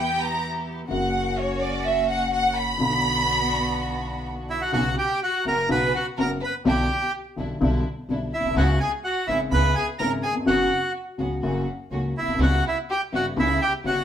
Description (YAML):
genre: tango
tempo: 125 BPM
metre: 4/4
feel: rubato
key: B harmonic minor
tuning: A4 = 440 Hz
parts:
  - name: warm studio violin section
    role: second line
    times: 0.0-14.0 s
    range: E4 to B5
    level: -26 LUFS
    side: right 1 dB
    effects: none
  - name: dark upright piano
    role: accompaniment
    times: 0.0-14.0 s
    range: F#1 to G4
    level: -27 LUFS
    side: left 2 dB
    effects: none
  - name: warm chamber string section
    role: stabs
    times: 0.0-14.0 s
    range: G3 to G4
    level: -31 LUFS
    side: equal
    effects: none
  - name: upright bass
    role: bass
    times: 0.0-14.0 s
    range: F#1 to E2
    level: -28 LUFS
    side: right 1 dB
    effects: none
  - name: bandoneon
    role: melody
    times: 4.5-14.0 s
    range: E4 to B5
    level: -24 LUFS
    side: right 1 dB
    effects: none
room: wet studio reverb, RT60 0.8 s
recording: band playing live in one room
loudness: -21 LUFS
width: side -9 dB against mid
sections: 0.0-4.7 A section; 4.7-14.0 B section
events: violin section solo 0.0-4.7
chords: 0.0 Em; 0.9 F#; 2.8 Bm; 4.7 Bsus2; 6.7 Em7/B; 8.6 C#m7; 10.5 F#sus4; 11.4 F#; 12.4 C#m7b5